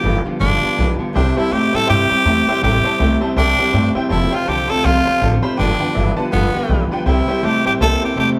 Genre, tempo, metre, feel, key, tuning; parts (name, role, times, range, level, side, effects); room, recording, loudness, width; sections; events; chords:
rockabilly; 162 BPM; 4/4; swing 60% on 8ths; C major; A4 = 439 Hz
growling tenor saxophone; melody; 0.0-8.3 s; B3 to A4; -21 LUFS; equal
picked steel-string acoustic guitar; accompaniment; 0.0-8.4 s; G2 to A4; -26 LUFS; equal
electric guitar through a small old amp; riff; 0.0-8.4 s; F2 to Bb3; -23 LUFS; equal
upright bass; bass; 0.0-8.3 s; F1 to A2; -22 LUFS; equal
honky-tonk upright piano; accompaniment; 1.2-8.3 s; B4 to C6; -27 LUFS; equal
moderate stone room reverb, RT60 1.4 s; band playing live in one room; -16 LUFS; mono
0.0-7.1 A section; 7.1-8.4 B section
0.0 G7; 1.1 C; 4.1 F; 5.6 G7; 7.1 C